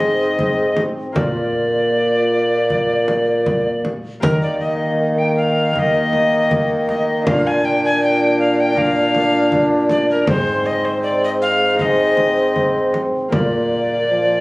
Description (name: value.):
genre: classical, renaissance-style consort dance.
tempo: 79 BPM.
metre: 4/4.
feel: straight.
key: Eb major.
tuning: A4 = 441 Hz.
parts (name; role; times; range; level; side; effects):
alto recorder; melody; 0.0-14.4 s; Bb4 to Ab5; -20 LUFS; left 1 dB; none.
clear trombone; accompaniment; 0.0-14.4 s; F3 to D4; -20 LUFS; equal; none.
concert harp; accompaniment; 0.0-14.4 s; Ab2 to C5; -27 LUFS; left 1 dB; none.
warm bassoon; bass; 0.0-14.4 s; Ab2 to Eb3; -20 LUFS; right 1 dB; none.
frame drum; percussion; 0.0-13.7 s; none; -24 LUFS; equal; none.
room: moderate recital hall reverb, RT60 1.6 s.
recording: recorded on a phone in the room, club reverb, compression.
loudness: -15 LUFS.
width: side -21 dB against mid.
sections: 0.0-4.2 A section; 4.2-14.4 A section.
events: none.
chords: 0.0 Ab; 1.2 Bb; 4.2 Eb; 7.3 Bb; 10.3 Ab; 13.3 Bb.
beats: 0.39 | 1.16 1.93 2.69 3.46 | 4.23 4.99 5.75 6.51 | 7.26 8.02 8.77 9.52 | 10.28 11.04 11.79 12.55 | 13.32 14.09.